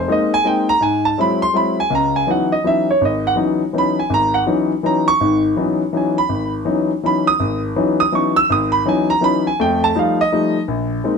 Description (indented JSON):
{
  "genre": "jazz",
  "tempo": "164 BPM",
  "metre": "3/4",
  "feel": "swing 63% on 8ths",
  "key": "unclear",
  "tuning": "A4 = 440 Hz",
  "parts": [
    { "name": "warm grand piano", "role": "solo", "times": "0.0-11.2 s", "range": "G#1 to E6", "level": "-15 LUFS", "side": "equal", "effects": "none" }
  ],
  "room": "moderate studio reverb, RT60 0.9 s",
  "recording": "none",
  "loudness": "-15 LUFS",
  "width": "side -5 dB against mid",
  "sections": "0.0-1.9 A section; 1.9-10.7 A section",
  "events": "none",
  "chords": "0.0 Bb9sus4; 0.8 Abaug7; 1.9 C#m11; 9.6 F9; 10.7 Bb9sus4",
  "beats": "0.08 0.44 | 0.81 1.17 1.54 | 1.91 2.27 2.64 | 3.00 3.37 3.73 | 4.10 4.46 4.83 | 5.20 5.56 5.93 | 6.29 6.66 7.02 | 7.39 7.75 8.12 | 8.48 8.85 9.22 | 9.58 9.95 10.31 | 10.68 11.04"
}